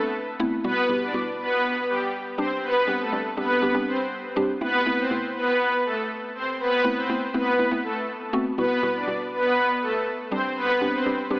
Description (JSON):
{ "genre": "pop", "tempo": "121 BPM", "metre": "4/4", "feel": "straight", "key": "unclear", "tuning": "A4 = 440 Hz", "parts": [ { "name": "mallet-like synth pluck", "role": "accompaniment", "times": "0.0-11.4 s", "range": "B2 to G4", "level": "-27 LUFS", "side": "equal", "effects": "chorus, phaser" }, { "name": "supersaw pad", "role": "melody", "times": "0.7-11.4 s", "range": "G3 to D5", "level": "-23 LUFS", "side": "equal", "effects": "tape echo" } ], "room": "moderate lush hall reverb, RT60 3.1 s", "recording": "AM radio sound", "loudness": "-22 LUFS", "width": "side -21 dB against mid", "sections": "0.0-11.4 A section", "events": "none", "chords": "0.0 Amadd9; 0.6 Emadd9/B; 2.4 Csus2; 4.6 Amadd9; 8.6 Emadd9/B; 10.3 Csus2" }